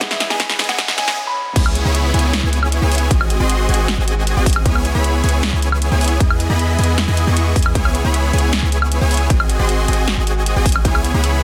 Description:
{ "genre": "future bass", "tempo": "155 BPM", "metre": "4/4", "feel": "half-time", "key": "C# minor", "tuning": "A4 = 440 Hz", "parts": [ { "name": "warm grand piano", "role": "melody", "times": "0.0-1.5 s", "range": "E5 to B5", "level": "-29 LUFS", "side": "equal", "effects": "vintage 12-bit sampler grit, sidechain pumping, digital delay" }, { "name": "clear concert grand piano", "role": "accompaniment", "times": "0.0-1.6 s", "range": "E3 to G#4", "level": "-40 LUFS", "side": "equal", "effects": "none" }, { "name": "muted studio string section", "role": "sustained chords", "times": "0.0-11.4 s", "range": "C#3 to F#4", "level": "-32 LUFS", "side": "equal", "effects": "none" }, { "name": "supersaw chords", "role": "riff", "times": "0.0-11.4 s", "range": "B3 to C#6", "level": "-23 LUFS", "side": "equal", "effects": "sidechain pumping" }, { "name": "warm 808-style bass", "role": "bass", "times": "0.0-11.4 s", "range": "G#1 to E2", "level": "-19 LUFS", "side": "equal", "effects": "sidechain pumping, high-pass filter" }, { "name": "big-room dance drum kit", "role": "drums", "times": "0.0-11.3 s", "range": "crash cymbal, hi-hat, snare drum, woodblock", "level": "-24 LUFS", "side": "equal", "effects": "studio reverb" }, { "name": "electronic kick drum", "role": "drums", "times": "0.0-10.9 s", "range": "none", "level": "-19 LUFS", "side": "equal", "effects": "studio reverb" }, { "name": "riser, swell and downlifter", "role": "sound effects", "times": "0.0-4.7 s", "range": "none", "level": "-32 LUFS", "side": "equal", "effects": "none" } ], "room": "little or no reverb", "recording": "dense, heavily limited modern master, high-pass filter", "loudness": "-16 LUFS", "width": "mono", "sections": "0.0-1.6 A section; 1.6-11.4 B section", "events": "build-up 0.0-1.6; drum fill 0.0-1.2; filter sweep 0.0-1.6; swell 0.8-1.6; break 1.2-1.6; drop 1.6-11.4", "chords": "0.0 Emaj7; 1.6 C#m7; 3.1 G#7; 4.7 C#m7; 6.2 Emaj7; 7.8 C#m7; 9.3 G#7; 10.8 C#m7" }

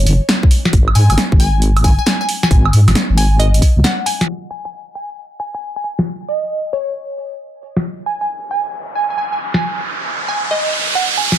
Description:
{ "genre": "UK garage, two-step garage", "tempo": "135 BPM", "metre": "4/4", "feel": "swing 66% on 16ths", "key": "unclear", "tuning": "A4 = 440 Hz", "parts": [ { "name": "glassy wavetable pluck", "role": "melody", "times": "0.0-11.4 s", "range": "Db5 to Ab5", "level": "-21 LUFS", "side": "right 1 dB", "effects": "chorus, ping-pong delay" }, { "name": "deep soft wobble bass", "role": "bass", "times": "0.0-3.8 s", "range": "Gb1 to Ab2", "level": "-12 LUFS", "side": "equal", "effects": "chorus" }, { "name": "punchy analog drum machine", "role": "drums", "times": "0.1-11.4 s", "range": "hi-hat, snare drum, woodblock", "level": "-17 LUFS", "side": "equal", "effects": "low-pass filter on hats, low-pass filter on snare, low-pass filter on perc, low-pass filter on room" }, { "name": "electronic kick drum", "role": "drums", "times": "0.4-3.7 s", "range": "none", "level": "-12 LUFS", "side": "equal", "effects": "none" }, { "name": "riser", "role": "sound effects", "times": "8.7-11.4 s", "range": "none", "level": "-19 LUFS", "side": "right 3 dB", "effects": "none" } ], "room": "little or no reverb", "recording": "dense, heavily limited modern master, low-pass filter", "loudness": "-13 LUFS", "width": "side -12 dB against mid", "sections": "0.0-4.3 A section; 4.3-11.4 B section", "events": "break 3.8-4.3; filter sweep on drum 4.3-11.4; filter sweep 4.3-11.4; riser 8.7-11.4", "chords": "none" }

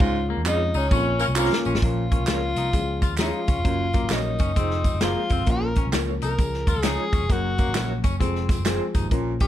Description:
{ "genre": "uptempo 1960s-style soul", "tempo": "132 BPM", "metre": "4/4", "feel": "swing 63% on 8ths", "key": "Bb minor", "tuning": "A4 = 440 Hz", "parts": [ { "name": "breathy tenor saxophone", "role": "melody", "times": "0.0-9.5 s", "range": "Db4 to Bb4", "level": "-28 LUFS", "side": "left 2 dB", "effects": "none" }, { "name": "dark upright piano", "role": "accompaniment", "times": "0.0-9.5 s", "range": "E3 to Bb4", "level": "-30 LUFS", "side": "left 4 dB", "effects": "none" }, { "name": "warm baritone saxophone", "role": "riff", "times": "0.0-9.4 s", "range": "Eb2 to Bb2", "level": "-32 LUFS", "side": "right 8 dB", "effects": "none" }, { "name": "vintage muted picked electric bass", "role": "bass", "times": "0.0-9.4 s", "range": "F1 to F2", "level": "-27 LUFS", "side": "equal", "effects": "none" }, { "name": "natural country drum kit", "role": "drums", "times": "0.0-9.5 s", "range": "hi-hat, kick drum, snare drum", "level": "-24 LUFS", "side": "equal", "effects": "none" }, { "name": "tambourine and handclaps", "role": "percussion", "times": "0.0-9.5 s", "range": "none", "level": "-34 LUFS", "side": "right 5 dB", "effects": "none" }, { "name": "clean electric guitar", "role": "riff", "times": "0.3-9.5 s", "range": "Bb3 to F4", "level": "-32 LUFS", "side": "left 5 dB", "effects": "none" }, { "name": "electric guitar through a small old amp", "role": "stabs", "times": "0.5-8.8 s", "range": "F4 to Db5", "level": "-31 LUFS", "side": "right 6 dB", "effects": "tremolo" }, { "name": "warm horn section", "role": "second line", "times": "1.2-1.8 s", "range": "Db4 to Bb4", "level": "-27 LUFS", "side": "left 1 dB", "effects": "none" } ], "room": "little or no reverb", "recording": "dark, warm production", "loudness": "-20 LUFS", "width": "side -12 dB against mid", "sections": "0.0-1.8 A section; 1.8-9.5 B section", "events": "drum fill 0.0-1.8", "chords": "0.0 Db; 0.9 Bbm; 2.7 Db; 3.6 Gb; 4.6 Fm; 5.5 Bbm; 6.4 Db; 7.3 Gb; 8.2 Fm" }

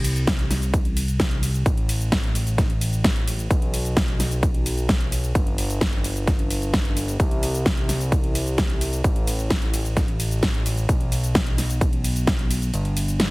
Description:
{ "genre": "EDM, festival progressive house", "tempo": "130 BPM", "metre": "4/4", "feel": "straight", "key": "A minor", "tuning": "A4 = 439 Hz", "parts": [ { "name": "fat analog bass", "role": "bass", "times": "0.0-13.3 s", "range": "G1 to C2", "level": "-24 LUFS", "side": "equal", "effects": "sidechain pumping" }, { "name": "big-room dance drum kit", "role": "drums", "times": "0.0-13.3 s", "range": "cabasa, hi-hat, ride cymbal, snare drum", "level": "-26 LUFS", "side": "equal", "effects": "none" }, { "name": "electronic kick drum", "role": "drums", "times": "0.3-12.4 s", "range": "none", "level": "-22 LUFS", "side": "equal", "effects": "none" } ], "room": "little or no reverb", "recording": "heavily compressed radio sound", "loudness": "-20 LUFS", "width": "side -23 dB against mid", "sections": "0.0-13.3 A section", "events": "kick drops out 12.7-13.3", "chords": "none" }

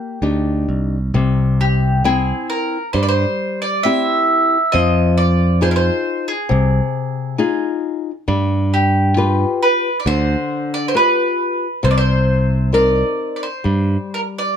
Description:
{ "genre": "fado-style ballad", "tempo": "67 BPM", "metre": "4/4", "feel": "rubato", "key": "C minor", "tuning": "A4 = 439 Hz", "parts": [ { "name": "bowl-back mandolin", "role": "melody", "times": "0.0-14.6 s", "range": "G4 to E5", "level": "-19 LUFS", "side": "right 2 dB", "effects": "none" }, { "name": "nylon-string guitar", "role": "accompaniment", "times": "0.0-14.6 s", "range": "C3 to G5", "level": "-20 LUFS", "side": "left 4 dB", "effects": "none" }, { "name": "modern bright picked electric bass", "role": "bass", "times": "0.2-14.0 s", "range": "C2 to G2", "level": "-16 LUFS", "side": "right 1 dB", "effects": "none" } ], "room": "light reverb", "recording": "close, detailed microphones", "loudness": "-15 LUFS", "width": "side -8 dB against mid", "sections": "0.0-14.6 A section", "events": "none", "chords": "0.0 Ebmaj7; 1.2 C; 4.7 Fm7; 8.3 G7; 11.8 Cm7" }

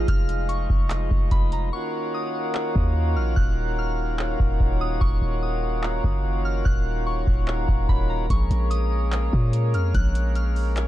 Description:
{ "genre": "hip hop, atmospheric cloud-rap", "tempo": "146 BPM", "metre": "4/4", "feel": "half-time", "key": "Eb minor", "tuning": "A4 = 440 Hz", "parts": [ { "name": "soft synth bell", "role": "melody", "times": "0.0-10.9 s", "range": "Bb5 to Gb6", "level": "-34 LUFS", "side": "left 1 dB", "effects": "chorus, digital delay" }, { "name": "pedal harmonium", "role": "sustained chords", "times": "0.0-10.9 s", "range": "Eb3 to Gb4", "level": "-28 LUFS", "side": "equal", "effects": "stereo widening, sidechain pumping" }, { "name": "warm 808-style bass", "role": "bass", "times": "0.0-10.9 s", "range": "Eb1 to Bb2", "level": "-24 LUFS", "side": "equal", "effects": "none" }, { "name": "booming analog drum machine", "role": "drums", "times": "0.1-10.9 s", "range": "handclaps, hi-hat, kick drum", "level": "-22 LUFS", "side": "equal", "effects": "none" } ], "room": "little or no reverb", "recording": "dark, warm production", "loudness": "-21 LUFS", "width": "side -14 dB against mid", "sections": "0.0-10.9 A section", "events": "hi-hats muted 1.7-8.3; break 1.7-2.5", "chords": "0.0 Fm7; 1.7 Ebm7; 8.3 Bbm7" }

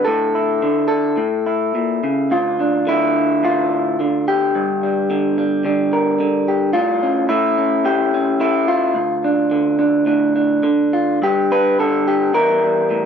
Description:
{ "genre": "folk, solo fingerstyle acoustic guitar", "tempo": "108 BPM", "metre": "4/4", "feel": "rubato", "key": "D minor", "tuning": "A4 = 441 Hz", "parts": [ { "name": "electric guitar through a small old amp", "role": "solo", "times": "0.0-13.1 s", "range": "D2 to B4", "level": "-15 LUFS", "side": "equal", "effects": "none" } ], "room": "light reverb", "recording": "none", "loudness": "-15 LUFS", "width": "side -7 dB against mid", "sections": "0.0-11.2 A section; 11.2-13.1 B section", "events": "none", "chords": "0.1 Asus4; 1.2 A; 2.3 Dm; 4.5 Gm; 6.7 A7; 8.9 Dm; 11.2 G5; 12.3 Edim" }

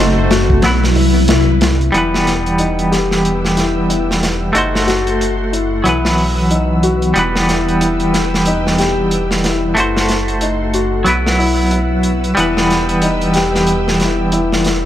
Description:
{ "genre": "trip hop", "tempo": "92 BPM", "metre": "4/4", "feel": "swing 60% on 16ths", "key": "E harmonic minor", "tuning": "A4 = 441 Hz", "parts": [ { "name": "semi-hollow electric guitar", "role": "accompaniment", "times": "0.0-14.9 s", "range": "E3 to C5", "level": "-16 LUFS", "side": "right 1 dB", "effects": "tremolo, tape echo" }, { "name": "string machine, cellos", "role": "sustained chords", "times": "0.0-14.9 s", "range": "F#3 to E6", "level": "-22 LUFS", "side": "right 1 dB", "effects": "ensemble chorus" }, { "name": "felt-muted upright piano", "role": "arpeggios", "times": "0.0-14.9 s", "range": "D#4 to G4", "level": "-19 LUFS", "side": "left 4 dB", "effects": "low-pass filter, tape echo" }, { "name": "dark detuned saw bass", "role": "bass", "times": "0.0-14.9 s", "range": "E1 to C2", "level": "-19 LUFS", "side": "equal", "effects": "tube saturation" }, { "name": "crunchy breakbeat drum kit", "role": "drums", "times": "0.3-14.8 s", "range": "hi-hat, kick drum, snare drum", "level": "-19 LUFS", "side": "equal", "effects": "high-pass filter on kick, high-pass filter on hats, high-pass filter on snare, high-pass filter on room" } ], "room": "light reverb", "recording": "vinyl crackle", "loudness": "-12 LUFS", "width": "side -11 dB against mid", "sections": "0.0-1.9 A section; 1.9-14.9 B section", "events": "filter sweep on clean electric guitar 0.0-1.9; filter sweep on felt piano 0.0-1.9; kick drops out 0.6-1.9", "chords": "0.0 F#dim; 0.6 Bsus4; 1.9 Em; 4.5 F#dim; 5.8 Bsus4; 7.2 Em; 9.8 F#dim; 11.1 Bsus4; 12.4 Em" }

